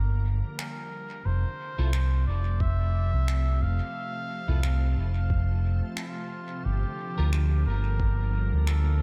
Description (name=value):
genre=ambient dub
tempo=89 BPM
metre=4/4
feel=swing 58% on 16ths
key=unclear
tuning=A4 = 440 Hz
part: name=trumpet with cup mute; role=melody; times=0.0-9.0 s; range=F4 to F5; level=-39 LUFS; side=equal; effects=dub echo
part: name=soft additive organ-like pad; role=sustained chords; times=0.0-9.0 s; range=C3 to A5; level=-40 LUFS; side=equal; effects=ensemble chorus, built-in reverb
part: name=fingered electric bass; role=bass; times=0.0-9.0 s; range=F1 to D2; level=-26 LUFS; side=equal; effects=none
part: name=soft-mallet drum kit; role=drums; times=0.6-8.8 s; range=finger snaps, toms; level=-42 LUFS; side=equal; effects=small room reverb, dub echo
part: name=clean electric guitar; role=stabs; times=1.8-7.3 s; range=E4 to Bb4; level=-47 LUFS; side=equal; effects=none
part: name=electronic kick drum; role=drums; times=2.6-8.2 s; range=none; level=-31 LUFS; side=equal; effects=overdrive, small room reverb
room=little or no reverb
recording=none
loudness=-27 LUFS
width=mono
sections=0.0-9.0 A section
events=fade-in on ambient pad 0.0-9.0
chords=0.0 Gm7; 1.3 F; 6.6 Gm7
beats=0.58 | 1.25 1.93 2.60 3.28 | 3.95 4.63 5.30 5.97 | 6.65 7.32 8.00 8.67